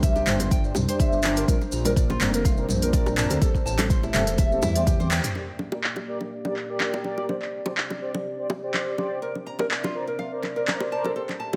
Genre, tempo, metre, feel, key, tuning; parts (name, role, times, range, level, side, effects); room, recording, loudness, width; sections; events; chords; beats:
afro house; 124 BPM; 4/4; swing 54% on 16ths; A4 = 442 Hz
dark analog pad; sustained chords; 0.0-11.6 s; G3 to D5; -36 LUFS; equal; subtle chorus, sidechain pumping
nylon-string guitar; arpeggios; 0.0-5.3, 9.2-11.6 s; E4 to Bb5; -32 LUFS; equal; sidechain pumping, dub echo
dark detuned saw bass; bass; 0.0-5.2 s; E1 to E2; -30 LUFS; equal; sidechain pumping
deep house drum kit; drums; 0.0-11.4 s; handclaps, hi-hat, toms; -30 LUFS; equal; low-pass filter on hats, low-pass filter on snare, low-pass filter on toms
electronic kick drum; drums; 0.0-5.0 s; -24 LUFS; equal
congas; percussion; 0.0-5.1 s; -35 LUFS; equal
maracas; percussion; 0.0-5.3 s; -40 LUFS; equal
bongos; percussion; 0.2-11.6 s; -34 LUFS; equal
mellow synth brass; stabs; 0.3-11.6 s; C4 to D5; -33 LUFS; equal; chorus, sidechain pumping, dub echo
light reverb, studio reverb; -25 LUFS; mono
0.0-5.4 A section; 5.4-11.6 B section
drum fill 4.9-5.4; band accent 5.1
0.0 Csus2; 1.5 Bbadd9; 3.4 Am7; 5.4 Gm; 7.3 Csus2; 9.2 Bbadd9
0.03 0.51 1.00 | 1.48 1.97 2.45 2.93 | 3.42 3.90 4.38 4.87 | 5.35 5.84 6.32 6.80 | 7.29 7.77 8.26 8.74 | 9.22 9.71 10.19 10.68 | 11.16